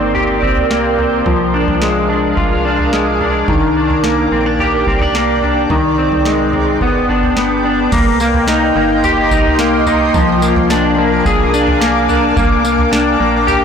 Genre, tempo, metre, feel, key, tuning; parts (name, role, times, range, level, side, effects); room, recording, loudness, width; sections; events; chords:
dream pop; 108 BPM; 4/4; straight; C minor; A4 = 440 Hz
shimmering ambient pad; sustained chords; 0.0-13.6 s; Bb4 to D6; -18 LUFS; right 3 dB; chorus, built-in reverb, low-pass filter
clean electric guitar; arpeggios; 0.0-13.6 s; Eb3 to Ab4; -13 LUFS; left 2 dB; ensemble chorus, low-pass filter, ping-pong delay
organ-like FM bass; bass; 0.0-13.6 s; G1 to C2; -21 LUFS; right 1 dB
booming analog drum machine; drums; 0.2-13.6 s; crash cymbal, kick drum, snare drum, tambourine, toms; -20 LUFS; right 2 dB
moderate plate reverb, RT60 1.6 s; blown-out, overdriven recording, overdrive; -11 LUFS; side -7 dB against mid
0.0-7.9 A section; 7.9-13.6 B section
0.0 Cm7; 1.3 Bb7/C; 3.5 Ebmaj7; 5.7 Abmaj7/C; 6.8 G; 7.9 Cm7; 10.1 Bb7/C; 12.4 Bb69